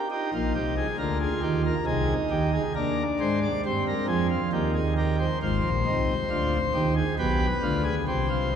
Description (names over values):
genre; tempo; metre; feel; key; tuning
classical, baroque-style 3-part fugue for pipe organ; 68 BPM; 3/4; straight; Eb major; A4 = 438 Hz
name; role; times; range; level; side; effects
pipe organ, principal chorus; solo; 0.0-8.6 s; Ab1 to D5; -23 LUFS; equal; none
room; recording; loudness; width
wet cathedral reverb, RT60 5.2 s; dark, warm production; -23 LUFS; side -8 dB against mid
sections
0.0-5.4 A section; 5.4-8.6 B section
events
none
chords
0.1 Eb; 1.9 Ab/C; 2.8 Bb7; 4.5 Eb; 5.4 Ab; 7.2 G7/B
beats
| 0.11 0.99 1.87 | 2.75 3.63 4.52 | 5.40 6.29 7.18 | 8.07